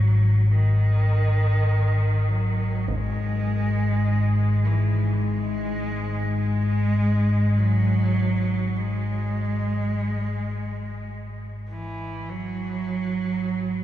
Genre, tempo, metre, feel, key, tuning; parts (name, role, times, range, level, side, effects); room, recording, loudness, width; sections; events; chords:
dark ambient drone; free time; A4 = 440 Hz
dark cello; melody; 0.0-13.8 s; D#3 to G#3; -28 LUFS; right 3 dB; analog delay
deep rumbling drone; drone; 0.0-13.8 s; G#1 to G#2; -22 LUFS; left 1 dB; built-in reverb
taiko ensemble; percussion; 2.9-3.1 s; -38 LUFS; right 1 dB
wet huge ambient reverb, RT60 7.4 s; dreamy mix soaked in reverb, small room reverb; -21 LUFS; side -12 dB against mid
0.0-13.8 A section
fade-out 9.1-13.8